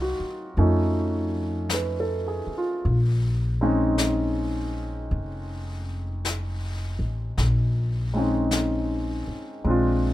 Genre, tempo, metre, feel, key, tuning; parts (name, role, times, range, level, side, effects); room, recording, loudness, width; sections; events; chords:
jazz ballad; 53 BPM; 4/4; swing 67% on 8ths; Bb minor; A4 = 445 Hz
clear upright piano; accompaniment; 0.0-10.1 s; F3 to Eb5; -26 LUFS; equal
upright bass; bass; 0.0-10.1 s; F1 to F2; -25 LUFS; equal
jazz brush drum kit; drums; 0.6-10.1 s; brushed snare drum, hi-hat, snare drum; -33 LUFS; left 3 dB
little or no reverb; minimal, uncompressed stereo recording; -23 LUFS; side -15 dB against mid
0.0-10.1 A section
0.0 Cm7b5; 0.6 Faug7; 2.8 Bbm11